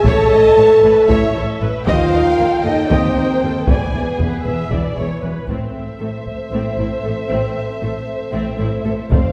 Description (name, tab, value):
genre	cinematic, epic orchestral film score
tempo	232 BPM (eighths)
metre	7/8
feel	straight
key	A minor from 5.5 s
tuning	A4 = 440 Hz
part	warm symphonic violin section	melody	0.0-9.3 s	G4 to F5	-31 LUFS	equal	none
part	dark studio violin section	second line	0.0-9.3 s	B4 to A5	-27 LUFS	equal	none
part	warm symphonic viola section	accompaniment	0.0-9.3 s	C4 to G#5	-27 LUFS	equal	none
part	mellow French horn section	sustained chords	0.0-9.3 s	B3 to A4	-18 LUFS	equal	none
part	taiko ensemble	drums	0.0-9.3 s	none	-23 LUFS	equal	none
part	rich symphonic cello section	bass	0.1-9.2 s	Eb2 to A2	-26 LUFS	equal	none
part	rich symphonic double bass section	bass	0.1-9.2 s	E1 to Eb2	-26 LUFS	equal	none
room	wet scoring stage reverb, RT60 1.6 s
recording	heard from further back in the room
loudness	-16 LUFS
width	mono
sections	0.0-5.5 A section; 5.5-9.3 B section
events	none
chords	0.0 Aadd9; 1.9 Ebadd9; 3.7 E7; 5.5 Am